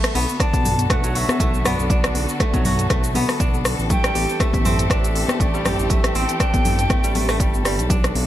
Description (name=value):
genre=afro house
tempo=120 BPM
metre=4/4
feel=swing 55% on 16ths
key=A dorian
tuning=A4 = 439 Hz
part: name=dark studio string section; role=sustained chords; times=0.0-8.3 s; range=D3 to A4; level=-29 LUFS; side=equal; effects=sidechain pumping
part: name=kora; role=arpeggios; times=0.0-8.3 s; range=F#3 to G4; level=-26 LUFS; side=right 1 dB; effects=sidechain pumping, ping-pong delay
part: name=deep house drum kit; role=drums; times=0.0-8.3 s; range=cabasa, hi-hat, rim click, toms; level=-24 LUFS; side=equal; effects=none
part: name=congas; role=percussion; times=0.1-8.3 s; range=none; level=-28 LUFS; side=left 2 dB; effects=none
part: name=smooth synth bass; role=bass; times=0.2-8.3 s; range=G1 to B1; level=-24 LUFS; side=equal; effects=sidechain pumping
part: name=silver concert flute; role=melody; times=0.4-7.7 s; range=D5 to A5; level=-28 LUFS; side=left 1 dB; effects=ping-pong delay
part: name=electronic kick drum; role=drums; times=0.4-8.0 s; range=none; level=-21 LUFS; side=equal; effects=none
room=little or no reverb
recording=none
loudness=-17 LUFS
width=side -12 dB against mid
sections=0.0-8.3 A section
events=none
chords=0.0 Bm7; 3.9 Am7